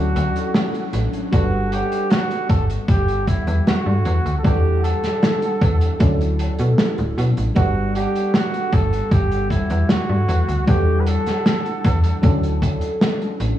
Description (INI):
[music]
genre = vaporwave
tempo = 77 BPM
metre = 4/4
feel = straight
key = G lydian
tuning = A4 = 440 Hz
[part]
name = warm flugelhorn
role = melody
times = 0.0-12.6 s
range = E4 to B4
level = -25 LUFS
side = right 1 dB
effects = vintage 12-bit sampler grit, tape echo
[part]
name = FM electric piano with soft pad layer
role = accompaniment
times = 0.0-13.6 s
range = F#3 to F#5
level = -24 LUFS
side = equal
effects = wide subtle chorus, tape echo
[part]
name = slap-like FM bass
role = bass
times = 0.0-13.5 s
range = D1 to B2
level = -19 LUFS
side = equal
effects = none
[part]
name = modern studio drum kit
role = drums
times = 0.2-13.6 s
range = hi-hat, snare drum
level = -23 LUFS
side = right 1 dB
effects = gated reverb
[part]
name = electronic kick drum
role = drums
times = 1.3-12.8 s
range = none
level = -16 LUFS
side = equal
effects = none
[sound]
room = small room ambience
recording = cassette tape, small room reverb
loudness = -16 LUFS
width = side -12 dB against mid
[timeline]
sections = 0.0-1.3 A section; 1.3-13.6 A section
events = break 0.0-1.3; band accent 0.5-0.9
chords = 0.0 Dmaj9; 1.3 Gmaj9; 4.4 Em11; 6.0 Dmaj9; 7.6 Gmaj9; 10.7 Em11; 12.2 Dmaj9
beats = 0.55 | 1.33 2.11 2.88 3.66 | 4.44 5.22 6.00 6.78 | 7.56 8.34 9.12 9.90 | 10.68 11.46 12.24 13.02